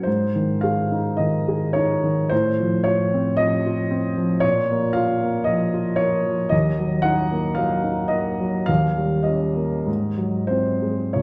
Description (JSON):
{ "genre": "classical, romantic nocturne for solo piano", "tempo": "45-58 BPM", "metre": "4/4", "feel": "rubato", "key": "unclear", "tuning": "A4 = 441 Hz", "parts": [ { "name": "warm upright piano", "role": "solo", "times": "0.0-11.2 s", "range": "Db2 to Gb5", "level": "-21 LUFS", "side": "equal", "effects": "none" } ], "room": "wet recital hall reverb, RT60 1.8 s", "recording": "dark, warm production", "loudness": "-21 LUFS", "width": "mono", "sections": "0.0-11.2 A section", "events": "none", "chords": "0.1 Ab5; 2.3 F7/A; 4.4 Bb5; 6.5 Ebm; 8.7 Eb7; 9.9 Ab7" }